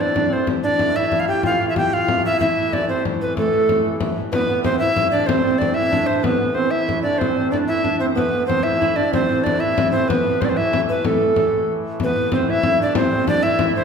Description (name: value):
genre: medieval dance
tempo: 125 BPM (dotted quarters)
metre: 6/8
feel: straight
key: A minor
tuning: A4 = 439 Hz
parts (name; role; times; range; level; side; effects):
- bright reedy tenor recorder; melody; 0.0-13.8 s; A4 to G5; -19 LUFS; equal; slapback echo
- mellow clarinet; second line; 0.0-13.8 s; A3 to G4; -23 LUFS; right 4 dB; none
- dark hurdy-gurdy; drone; 0.0-13.8 s; A2 to E3; -28 LUFS; left 2 dB; none
- frame drum; percussion; 0.2-13.8 s; none; -24 LUFS; left 3 dB; none
room: wet recital hall reverb, RT60 1.4 s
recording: heard from further back in the room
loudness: -16 LUFS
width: side -6 dB against mid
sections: 0.0-4.3 A section; 4.3-12.0 B section; 12.0-13.8 B section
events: none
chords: none